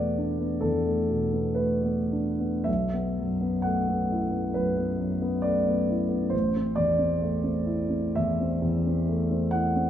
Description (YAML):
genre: classical, impressionist solo piano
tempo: 52-68 BPM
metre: 4/4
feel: rubato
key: unclear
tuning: A4 = 442 Hz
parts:
  - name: warm concert grand piano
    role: solo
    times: 0.0-9.9 s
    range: A1 to F#5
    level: -24 LUFS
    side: equal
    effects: none
room: moderate scoring stage reverb, RT60 1.9 s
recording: dark, warm production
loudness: -24 LUFS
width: side -10 dB against mid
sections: 0.0-9.9 A section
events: none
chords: 0.0 D69/E; 2.7 B7sus4; 6.3 Am